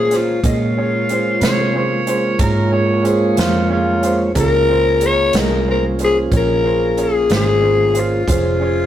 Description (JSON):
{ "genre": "slow blues", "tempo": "61 BPM (dotted quarters)", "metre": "12/8", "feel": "straight", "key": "Bb minor", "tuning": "A4 = 439 Hz", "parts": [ { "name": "growling tenor saxophone", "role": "melody", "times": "0.0-8.9 s", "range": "F4 to Db5", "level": "-17 LUFS", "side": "left 4 dB", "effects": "none" }, { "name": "clear upright piano", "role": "accompaniment", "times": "0.0-8.9 s", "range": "Db4 to Eb5", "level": "-24 LUFS", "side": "right 2 dB", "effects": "none" }, { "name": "mellow tonewheel organ", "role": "sustained chords", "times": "0.0-8.9 s", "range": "Ab3 to Db5", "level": "-20 LUFS", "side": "right 2 dB", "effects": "slow rotary speaker" }, { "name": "vintage muted fingered electric bass", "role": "bass", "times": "0.0-8.9 s", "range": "F1 to C3", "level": "-21 LUFS", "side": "right 1 dB", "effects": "none" }, { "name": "swinging big-band drum kit", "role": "drums", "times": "0.1-8.4 s", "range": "hi-hat, kick drum, snare drum", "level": "-22 LUFS", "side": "right 1 dB", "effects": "none" }, { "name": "overdriven harmonica", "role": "second line", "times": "1.4-4.2 s", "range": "F4 to Db5", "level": "-22 LUFS", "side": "right 2 dB", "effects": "none" } ], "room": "moderate stone room reverb, RT60 1.1 s", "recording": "rough rehearsal-room recording, tube saturation", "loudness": "-13 LUFS", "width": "side -11 dB against mid", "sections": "0.0-8.9 A section", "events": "none", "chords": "0.0 Bbm9", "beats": "| 0.43 1.41 2.39 3.37 | 4.35 5.33 6.31 7.29 | 8.27" }